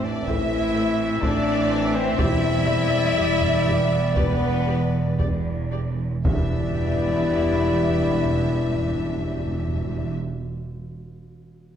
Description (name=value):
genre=cinematic, epic orchestral film score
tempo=56-64 BPM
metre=4/4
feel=straight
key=E minor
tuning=A4 = 440 Hz
part: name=warm symphonic violin section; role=melody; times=0.0-10.1 s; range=B4 to E5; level=-32 LUFS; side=left 1 dB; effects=none
part: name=warm symphonic violin section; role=second line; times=0.0-10.1 s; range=B4 to E5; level=-32 LUFS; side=left 2 dB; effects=none
part: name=bright trombone section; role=sustained chords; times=0.0-10.1 s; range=E3 to C4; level=-32 LUFS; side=right 3 dB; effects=none
part: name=mellow French horn section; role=sustained chords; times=0.0-10.1 s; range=B3 to E4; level=-26 LUFS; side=left 6 dB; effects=none
part: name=warm trumpet section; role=stabs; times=0.0-10.1 s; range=D5 to E5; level=-30 LUFS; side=left 1 dB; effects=none
part: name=warm symphonic cello section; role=bass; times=0.0-10.1 s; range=E2 to A2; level=-29 LUFS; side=right 2 dB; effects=none
part: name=warm symphonic double bass section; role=bass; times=0.0-10.1 s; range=E1 to A1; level=-27 LUFS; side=right 3 dB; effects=none
part: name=sub drop and impact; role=sound effects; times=6.2-10.2 s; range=none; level=-36 LUFS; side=equal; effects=none
part: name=dark symphonic viola section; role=accompaniment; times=0.3-10.1 s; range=D4 to D5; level=-35 LUFS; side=right 3 dB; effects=none
part: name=taiko ensemble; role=drums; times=0.3-8.3 s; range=none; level=-26 LUFS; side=equal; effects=none
part: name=timpani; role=percussion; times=6.2-10.1 s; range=E2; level=-29 LUFS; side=equal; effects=none
room=moderate scoring stage reverb, RT60 1.5 s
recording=dark, warm production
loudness=-20 LUFS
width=side -9 dB against mid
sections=0.0-6.2 A section; 6.2-10.5 B section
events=impact 0.0-2.2, 6.2-10.5; slowing down 0.0-6.2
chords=0.0 Am; 2.2 Em7